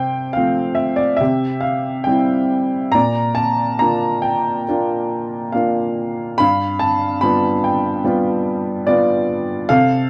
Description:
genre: classical, lyrical solo piano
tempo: 68-74 BPM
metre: 4/4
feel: rubato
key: unclear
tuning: A4 = 440 Hz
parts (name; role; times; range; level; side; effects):
- warm upright piano; solo; 0.0-10.1 s; G2 to B5; -18 LUFS; equal; none
room: moderate small room reverb, RT60 0.5 s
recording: dark, warm production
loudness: -18 LUFS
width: mono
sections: 0.0-10.1 A section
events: none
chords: 0.0 F/C; 1.2 C; 2.9 Bb; 6.4 G7

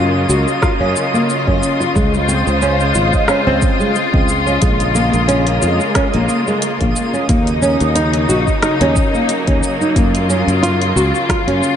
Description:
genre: organic downtempo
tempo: 90 BPM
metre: 4/4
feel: swing 55% on 16ths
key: unclear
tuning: A4 = 440 Hz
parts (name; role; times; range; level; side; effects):
- muted studio string section; sustained chords; 0.0-11.8 s; Db3 to C5; -18 LUFS; left 2 dB; sidechain pumping
- nylon-string guitar; arpeggios; 0.0-11.8 s; Ab3 to Gb4; -18 LUFS; equal; analog delay
- sustaining fretless electric bass; bass; 0.0-11.6 s; Ab1 to Gb2; -18 LUFS; equal; none
- twinkling granular texture; texture; 0.0-11.8 s; Eb5; -25 LUFS; right 1 dB; built-in reverb, analog chorus
- deep house drum kit; drums; 0.3-11.8 s; hi-hat, rim click, shaker; -23 LUFS; equal; none
- electronic kick drum; drums; 0.6-11.4 s; none; -17 LUFS; equal; none
room: moderate plate reverb, RT60 2.6 s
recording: dreamy mix soaked in reverb, nothing above 10.6 kHz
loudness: -12 LUFS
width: side -9 dB against mid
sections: 0.0-11.8 A section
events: none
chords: 0.0 Gbmaj7; 2.0 Dbmaj7; 4.6 Bbm7; 7.3 Ebm7; 10.0 Gbmaj7

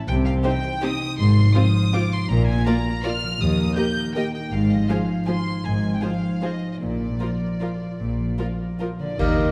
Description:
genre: classical, orchestral ballroom waltz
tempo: 141-177 BPM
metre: 3/4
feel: rubato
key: unclear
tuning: A4 = 440 Hz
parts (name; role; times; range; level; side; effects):
- concert harp; arpeggios; 0.0-9.5 s; Ab2 to C5; -29 LUFS; equal; none
- warm chamber violin section; melody; 0.1-9.5 s; D5 to G6; -33 LUFS; equal; none
- warm chamber cello section; bass; 0.1-9.5 s; Eb2 to Eb3; -28 LUFS; equal; none
- warm chamber double bass section; bass; 0.1-9.5 s; Ab1 to Eb2; -27 LUFS; equal; none
- warm chamber violin section; second line; 0.4-8.9 s; F4 to Eb5; -36 LUFS; equal; none
- warm chamber viola section; accompaniment; 0.4-8.9 s; F3 to G4; -32 LUFS; equal; none
- mellow hollow flute section; second line; 9.0-9.5 s; D5 to Eb5; -31 LUFS; equal; none
- mellow clarinet; second line; 9.2-9.5 s; G4; -31 LUFS; equal; none
- warm oboe; second line; 9.2-9.5 s; Bb4; -32 LUFS; equal; none
- warm bassoon; accompaniment; 9.2-9.5 s; Bb3; -30 LUFS; equal; none
- clash cymbals and concert bass drum; percussion; 9.2-9.5 s; none; -26 LUFS; equal; none
room: wet scoring stage reverb, RT60 1.6 s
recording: vinyl crackle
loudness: -22 LUFS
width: mono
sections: 0.0-9.2 A section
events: band accent 9.2-9.5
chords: 0.1 Cm; 1.2 Fm/Ab; 2.3 Bb5; 3.4 Eb; 4.5 Fm/Ab; 6.8 Bb

